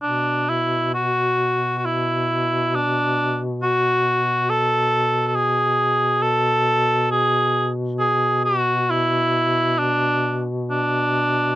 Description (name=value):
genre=caucasian folk, Caucasian lament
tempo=67 BPM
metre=4/4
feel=rubato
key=B dorian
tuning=A4 = 440 Hz
part: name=warm cor anglais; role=melody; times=0.0-11.6 s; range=D4 to A4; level=-18 LUFS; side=equal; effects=none
part: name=mellow duduk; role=drone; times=0.0-11.6 s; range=B2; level=-24 LUFS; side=equal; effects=none
room=little or no reverb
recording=dry, close 1970s-style studio recording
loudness=-18 LUFS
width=side -15 dB against mid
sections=0.0-11.6 A section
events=none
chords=none